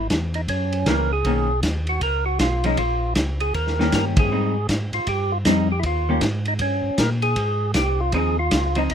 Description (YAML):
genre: soul jazz organ trio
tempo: 157 BPM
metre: 4/4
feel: swing 63% on 8ths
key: Ab major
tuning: A4 = 441 Hz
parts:
  - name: percussive tonewheel organ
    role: melody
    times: 0.0-8.9 s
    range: Db4 to Bb4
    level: -24 LUFS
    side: right 1 dB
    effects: slow rotary speaker, overdrive
  - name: mellow tonewheel organ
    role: bass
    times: 0.0-8.9 s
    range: Bb1 to Bb2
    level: -24 LUFS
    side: equal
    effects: slow rotary speaker
  - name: vintage drum kit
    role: drums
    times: 0.1-8.9 s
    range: hi-hat, kick drum, ride cymbal, snare drum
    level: -24 LUFS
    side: equal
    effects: none
  - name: vintage hollow-body jazz guitar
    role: accompaniment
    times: 0.9-8.9 s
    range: D#3 to G4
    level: -23 LUFS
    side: left 2 dB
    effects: none
room: little or no reverb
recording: minimal, uncompressed stereo recording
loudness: -19 LUFS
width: side -8 dB against mid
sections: 0.0-8.9 A section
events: band accent 4.1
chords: 0.5 Gb7; 1.2 Bmaj9; 2.8 Bbm; 3.5 Eb7; 4.3 Abmaj7; 5.8 Eb7; 7.4 Ab6